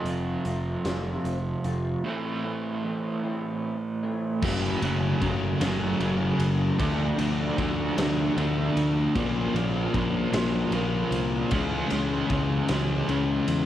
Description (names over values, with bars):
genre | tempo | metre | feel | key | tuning
quiet-loud alternative rock | 51 BPM (dotted quarters) | 6/8 | straight | unclear | A4 = 444 Hz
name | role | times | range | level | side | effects
electric guitar through a small old amp | arpeggios | 0.0-4.4 s | E3 to F4 | -34 LUFS | left 2 dB | analog chorus, analog delay
raw garage guitar | riff | 0.0-13.7 s | F2 to D4 | -28 LUFS | right 4 dB | overdrive, tremolo
fuzz fingered electric bass | bass | 0.0-13.7 s | F1 to E2 | -30 LUFS | equal | overdrive
big rock drum kit | drums | 0.1-13.7 s | crash cymbal, hi-hat, kick drum, ride cymbal, snare drum | -33 LUFS | equal | none
thick fuzz guitar | riff | 4.4-13.7 s | F#2 to D4 | -28 LUFS | left 7 dB | distortion
room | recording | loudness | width
light reverb | home recording on cassette | -24 LUFS | side -12 dB against mid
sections
0.0-4.4 A section; 4.4-13.7 B section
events
none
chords
0.0 F; 2.0 Am; 4.4 F#m; 6.8 Dm; 9.2 A#m; 11.5 C#m